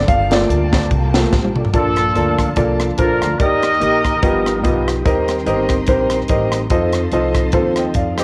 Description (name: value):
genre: uptempo gospel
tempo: 145 BPM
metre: 4/4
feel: swing 56% on 8ths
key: Bb major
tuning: A4 = 440 Hz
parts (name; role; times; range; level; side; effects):
- clear grand piano; accompaniment; 0.0-8.2 s; G2 to G5; -20 LUFS; equal; cassette tape
- mellow tonewheel organ; sustained chords; 0.0-8.2 s; Eb3 to D5; -28 LUFS; equal; slow rotary speaker, chorus vibrato, cassette tape
- warm studio string section; sustained chords; 0.0-8.2 s; Bb3 to C6; -35 LUFS; equal; cassette tape
- upright bass; bass; 0.0-8.2 s; G1 to F2; -24 LUFS; equal; none
- crisp fusion drum kit; drums; 0.1-8.2 s; hi-hat, kick drum, rim click, snare drum, toms; -22 LUFS; equal; none
- clear horn section; melody; 1.7-4.9, 8.2 s; D4 to Eb5; -20 LUFS; equal; cassette tape
room: light reverb, studio reverb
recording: home recording on cassette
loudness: -16 LUFS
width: mono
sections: 0.0-1.7 A section; 1.7-8.2 B section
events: grand piano solo 0.0-1.7; drum fill 1.3-1.7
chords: 0.1 Gm9; 1.7 Bbmaj7; 3.4 Ebmaj7; 4.2 G7alt; 5.1 Cm7; 6.7 F7